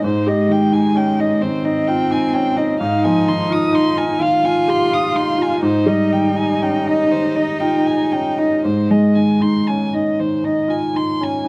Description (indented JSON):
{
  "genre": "neoclassical piano and strings",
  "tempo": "38-44 BPM (dotted quarters)",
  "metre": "6/8",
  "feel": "rubato",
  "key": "Ab major",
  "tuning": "A4 = 440 Hz",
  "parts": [
    { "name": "dark violin", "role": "melody", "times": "0.0-11.5 s", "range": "C5 to Eb6", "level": "-24 LUFS", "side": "equal", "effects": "none" },
    { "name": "warm cello", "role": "second line", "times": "0.0-10.2 s", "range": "Ab3 to F4", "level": "-22 LUFS", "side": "equal", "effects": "none" },
    { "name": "felt-muted upright piano", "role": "accompaniment", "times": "0.0-11.5 s", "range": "Ab2 to G4", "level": "-21 LUFS", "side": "equal", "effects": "none" }
  ],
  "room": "light reverb",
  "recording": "none",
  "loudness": "-17 LUFS",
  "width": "mono",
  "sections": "0.0-11.5 A section",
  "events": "none",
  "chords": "0.0 Abmaj7; 2.8 Fm7/Ab; 5.6 Abmaj7(no3); 8.6 Ab"
}